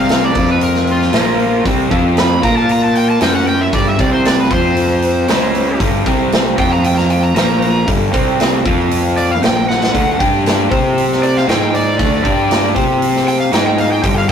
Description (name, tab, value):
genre	blues rock power trio and southern rock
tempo	116 BPM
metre	4/4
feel	straight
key	unclear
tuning	A4 = 439 Hz
part	overdriven slide guitar	melody	0.0-14.3 s	F4 to B5	-18 LUFS	equal	none
part	crunchy overdriven guitar	riff	0.0-14.3 s	G2 to C5	-15 LUFS	equal	none
part	growling fingered electric bass	bass	0.0-14.3 s	G1 to C3	-20 LUFS	equal	overdrive
part	big rock drum kit	drums	0.1-14.3 s	hi-hat, kick drum, snare drum	-17 LUFS	equal	none
room	moderate studio reverb, RT60 0.5 s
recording	rough rehearsal-room recording, tube saturation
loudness	-11 LUFS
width	side -8 dB against mid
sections	0.0-14.3 A section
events	drum fill 9.7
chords	0.4 F5; 1.1 Bb5; 1.7 C5; 1.9 F5; 2.4 Bb5; 3.2 F#5; 3.7 G5; 4.0 C5; 4.5 F5; 5.3 C#5; 5.8 G5; 6.1 C5; 6.6 F5; 7.4 Bb5; 7.9 G5; 8.1 C5; 8.7 F5; 9.4 Bb5; 9.9 D; 10.2 G5; 10.7 C5; 11.5 Ab5; 12.0 D5; 12.3 G5; 12.8 C5; 13.5 Ab5; 14.0 G5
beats	0.10 0.62 1.14 | 1.66 2.17 2.69 3.21 | 3.73 4.25 4.77 5.29 | 5.81 6.33 6.84 7.36 | 7.88 8.40 8.91 9.43 | 9.94 10.46 10.97 11.49 | 12.00 12.51 13.02 13.53 | 14.04